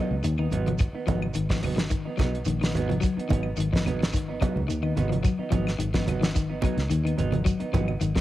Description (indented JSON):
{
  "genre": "afrobeat",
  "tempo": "108 BPM",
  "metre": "4/4",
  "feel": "straight",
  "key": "G# dorian",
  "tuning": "A4 = 439 Hz",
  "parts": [
    { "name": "electric guitar at the edge of break-up", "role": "arpeggios", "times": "0.0-8.2 s", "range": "D#3 to F#3", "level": "-30 LUFS", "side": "left 6 dB", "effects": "warbly pitch drift, cassette tape, analog delay" },
    { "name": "semi-hollow electric guitar", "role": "stabs", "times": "0.0-8.2 s", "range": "F#3 to D#4", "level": "-32 LUFS", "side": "right 5 dB", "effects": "cassette tape" },
    { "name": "fingered electric bass", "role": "bass", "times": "0.1-8.2 s", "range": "G#1 to D#2", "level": "-29 LUFS", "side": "equal", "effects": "none" },
    { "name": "damped 70s drum kit", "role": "drums", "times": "0.2-8.2 s", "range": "hi-hat, kick drum, snare drum", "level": "-26 LUFS", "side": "equal", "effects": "none" },
    { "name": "shekere", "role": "percussion", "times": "0.2-8.2 s", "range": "none", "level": "-37 LUFS", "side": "right 3 dB", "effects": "none" },
    { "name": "claves", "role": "percussion", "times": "0.4-8.0 s", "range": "none", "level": "-43 LUFS", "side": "left 8 dB", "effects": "none" },
    { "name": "congas", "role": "percussion", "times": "0.5-8.0 s", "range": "none", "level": "-31 LUFS", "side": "right 4 dB", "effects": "none" }
  ],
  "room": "light reverb, small room ambience",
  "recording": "home recording on cassette",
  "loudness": "-23 LUFS",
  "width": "side -14 dB against mid",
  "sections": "0.0-8.2 A section",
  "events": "none",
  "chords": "0.0 G#m7"
}